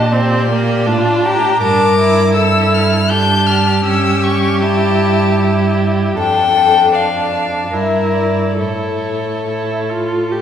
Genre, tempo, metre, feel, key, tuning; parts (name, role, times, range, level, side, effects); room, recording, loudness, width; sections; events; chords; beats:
classical, slow romantic movement for string quartet; 68-82 BPM; 3/4; rubato; A4 = 440 Hz
dark violin; melody; 0.0-10.3 s; C#5 to G6; -17 LUFS; left 6 dB
rich violin; second line; 0.0-10.4 s; F4 to D5; -18 LUFS; left 3 dB
clear viola; accompaniment; 0.0-10.4 s; Bb3 to G4; -18 LUFS; right 2 dB
clear cello; bass; 0.0-10.4 s; F2 to Bb2; -17 LUFS; right 3 dB
wet recital hall reverb, RT60 1.4 s; recorded in a church or concert hall; -12 LUFS; side -9 dB against mid
0.0-10.4 A section
0.0 Gm/Bb; 1.6 Gm; 3.9 A7/G; 6.2 Dm/F; 7.7 Edim/G; 8.6 A
0.12 0.87 | 1.62 2.35 3.10 | 3.85 4.62 5.41 | 6.18 6.93 7.74 | 8.59 9.46 10.31